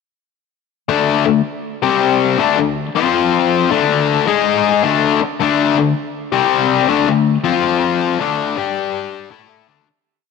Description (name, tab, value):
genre	rock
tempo	107 BPM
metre	4/4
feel	swing 66% on 8ths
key	D minor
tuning	A4 = 438 Hz
part	overdriven electric guitar	solo	0.9-9.9 s	C3 to A4	-14 LUFS	left 8 dB	none
room	moderate plate reverb, RT60 2.7 s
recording	none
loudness	-13 LUFS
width	side -4 dB against mid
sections	0.9-9.9 riff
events	fade-out 7.6-9.9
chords	0.9 D5; 1.7 C5; 2.3 D5; 2.9 F5; 3.7 D5; 4.3 G#5; 4.8 D5; 6.2 C5; 6.8 D5; 7.4 F5; 8.2 D5; 8.5 G5; 9.3 D5